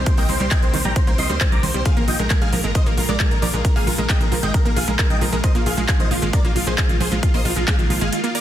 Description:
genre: uplifting trance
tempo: 134 BPM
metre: 4/4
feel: straight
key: unclear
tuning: A4 = 441 Hz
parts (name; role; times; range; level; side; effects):
- big supersaw lead; melody; 0.0-8.4 s; F4 to D6; -25 LUFS; equal; sidechain pumping, ping-pong delay
- lush unison pad; sustained chords; 0.0-8.4 s; Eb3 to G4; -28 LUFS; left 1 dB; chorus, sidechain pumping
- solid FM bass; bass; 0.0-8.1 s; Ab1 to D2; -24 LUFS; equal; sidechain pumping
- analog pluck; arpeggios; 0.1-8.4 s; C3 to F4; -27 LUFS; right 3 dB; chorus, sidechain pumping, ping-pong delay
- big-room dance drum kit; drums; 0.1-8.4 s; handclaps, hi-hat; -25 LUFS; equal; none
- electronic kick drum; drums; 0.1-7.8 s; none; -18 LUFS; equal; none
room: little or no reverb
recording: dense, heavily limited modern master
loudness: -16 LUFS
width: side -11 dB against mid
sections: 0.0-8.4 A section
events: none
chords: 0.0 Cm7; 1.9 Bb7sus4

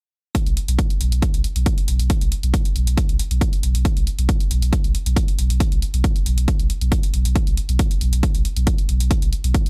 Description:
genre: driving peak-time techno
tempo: 137 BPM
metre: 4/4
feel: straight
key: unclear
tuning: A4 = 439 Hz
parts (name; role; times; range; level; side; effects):
- electronic hi-hat; drums; 0.3-9.7 s; none; -33 LUFS; equal; sidechain pumping on hats
- electronic kick drum; drums; 0.3-9.6 s; none; -22 LUFS; equal; overdrive
- saturated sub bass; bass; 0.5-9.5 s; B1; -22 LUFS; equal; tube saturation, sidechain pumping, low-pass filter
room: little or no reverb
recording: none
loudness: -20 LUFS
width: mono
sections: 0.3-9.7 A section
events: none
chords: none

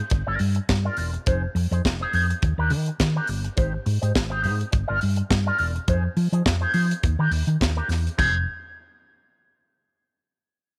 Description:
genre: disco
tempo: 104 BPM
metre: 4/4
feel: swing 56% on 16ths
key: F dorian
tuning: A4 = 440 Hz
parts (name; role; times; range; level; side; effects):
- electric guitar with an envelope filter; accompaniment; 0.0-8.4 s; D4 to D5; -30 LUFS; equal; wah, spring reverb
- hollow-body short-scale fingered electric bass; bass; 0.1-8.5 s; E1 to F3; -26 LUFS; equal; none
- tight funk drum kit; drums; 0.1-8.3 s; china cymbal, hi-hat, kick drum, snare drum, toms; -28 LUFS; equal; none
room: little or no reverb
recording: none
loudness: -23 LUFS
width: mono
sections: 0.0-8.2 A section; 8.2-10.5 B section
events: none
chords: 0.1 Gm7; 1.3 Fm7; 2.4 Ebmaj7; 3.6 Abmaj7; 4.7 Gm7; 5.9 Fm7; 7.0 Ebmaj7; 8.2 Fm7

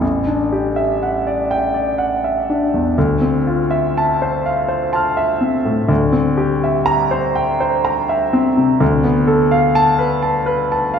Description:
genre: classical, impressionist solo piano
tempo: 62 BPM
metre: 3/4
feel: rubato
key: D dorian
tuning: A4 = 440 Hz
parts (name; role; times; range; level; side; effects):
- clear grand piano; solo; 0.0-11.0 s; A1 to F6; -14 LUFS; equal; none
room: wet recital hall reverb, RT60 1.4 s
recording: recorded in a church or concert hall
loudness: -14 LUFS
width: side -7 dB against mid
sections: 0.0-11.0 A section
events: none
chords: 0.0 Em11/A; 3.0 Dm9; 5.9 C9/D; 8.8 Dm6

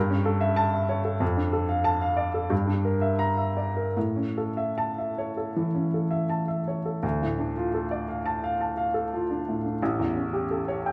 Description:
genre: classical, romantic character piece for solo piano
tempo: 74-97 BPM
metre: 4/4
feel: rubato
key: D minor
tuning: A4 = 441 Hz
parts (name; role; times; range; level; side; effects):
- warm upright piano; solo; 0.0-10.9 s; A1 to Bb5; -27 LUFS; equal; none
room: wet recital hall reverb, RT60 1.7 s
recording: none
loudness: -27 LUFS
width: mono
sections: 0.0-7.0 A section; 7.0-10.9 B section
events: none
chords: 0.0 A7/G; 1.2 Dm/F; 2.5 Em7b5/G; 4.0 A; 7.0 Dm; 9.8 A7

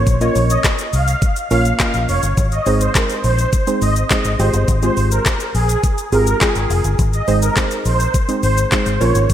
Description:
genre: dance-pop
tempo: 104 BPM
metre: 4/4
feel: straight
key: Ab major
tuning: A4 = 440 Hz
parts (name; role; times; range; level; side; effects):
- soft round pluck; accompaniment; 0.0-9.3 s; Ab3 to G5; -21 LUFS; right 2 dB; chorus, sidechain pumping
- vintage muted fingered electric bass; bass; 0.0-9.3 s; F1 to C2; -17 LUFS; equal; sidechain pumping
- smooth R&B drum kit; drums; 0.1-9.3 s; handclaps, hi-hat, kick drum, shaker, snare drum; -19 LUFS; left 1 dB; gated reverb
- filtered supersaw swell; melody; 0.2-9.1 s; Ab4 to F5; -20 LUFS; right 1 dB; wide subtle chorus, sidechain pumping, digital delay
room: light reverb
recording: bright 1980s-style digital production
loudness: -14 LUFS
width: side -10 dB against mid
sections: 0.0-9.3 A section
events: none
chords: 0.0 Bbm; 2.4 Ab; 4.4 Fmadd9; 7.0 Ab

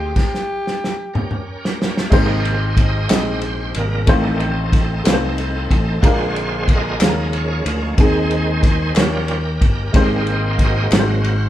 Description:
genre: slow gospel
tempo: 61 BPM (dotted quarters)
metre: 6/8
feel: straight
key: Ab major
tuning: A4 = 444 Hz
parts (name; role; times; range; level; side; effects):
- breathy alto saxophone; melody; 0.0-1.4 s; G4; -24 LUFS; left 1 dB; none
- warm upright piano; accompaniment; 0.0-11.5 s; Ab2 to G5; -22 LUFS; left 1 dB; none
- bright tonewheel organ; sustained chords; 0.0-11.5 s; C3 to G5; -24 LUFS; right 2 dB; slow rotary speaker, chorus vibrato
- fingered electric bass; bass; 0.0-11.5 s; G1 to Eb2; -21 LUFS; equal; none
- warm soul drum kit; drums; 0.2-11.4 s; crash cymbal, kick drum, ride cymbal, snare drum, toms; -18 LUFS; equal; none
- group handclap; percussion; 3.1-11.2 s; none; -29 LUFS; left 2 dB; none
room: light reverb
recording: band playing live in one room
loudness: -15 LUFS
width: side -13 dB against mid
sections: 0.0-2.1 A section; 2.1-11.5 B section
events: drum fill 0.2-2.1; tonewheel organ solo 2.1-11.5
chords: 0.2 Gdim; 2.1 Abmaj7; 4.1 F7/A; 6.0 Bb7; 7.0 Eb9sus4; 8.0 Ab/Eb; 9.0 Eb7; 9.9 Abmaj7; 10.9 Ab7

